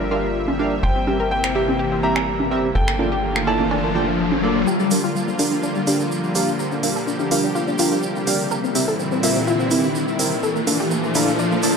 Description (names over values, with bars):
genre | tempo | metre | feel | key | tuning
progressive house | 125 BPM | 4/4 | straight | G dorian | A4 = 438 Hz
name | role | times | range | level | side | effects
bright concert grand piano | melody | 0.0-4.1 s | Bb4 to Bb5 | -26 LUFS | equal | ping-pong delay
supersaw pad | sustained chords | 0.0-11.8 s | Bb2 to E5 | -24 LUFS | left 1 dB | none
analog pluck | arpeggios | 0.0-11.8 s | G3 to C5 | -25 LUFS | left 2 dB | chorus, ping-pong delay
tight sequencer bass | bass | 0.0-4.7 s | G1 | -27 LUFS | equal | none
chorused polysynth | stabs | 0.1-11.7 s | Bb3 to A5 | -23 LUFS | right 2 dB | ping-pong delay
congas and cowbell | percussion | 0.5-4.4 s | none | -26 LUFS | right 2 dB | none
riser | sound effects | 2.5-11.8 s | none | -26 LUFS | left 2 dB | none
deep house drum kit | drums | 1.4-11.7 s | finger snaps, hi-hat | -26 LUFS | right 2 dB | none
tube shaker | percussion | 4.7-11.7 s | none | -31 LUFS | right 5 dB | none
room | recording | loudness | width
moderate scoring stage reverb, RT60 2.0 s | dark, warm production | -18 LUFS | side -5 dB against mid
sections
0.0-4.7 A section; 4.7-11.8 B section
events
riser 2.5-4.7, 4.7-11.8; build-up 4.7-11.8; filter sweep on synth pluck 4.7-11.8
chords
0.0 Gm7; 0.8 C7/G; 2.8 Bbmaj7/G; 4.7 Gm7; 8.5 C7; 10.4 Bbmaj7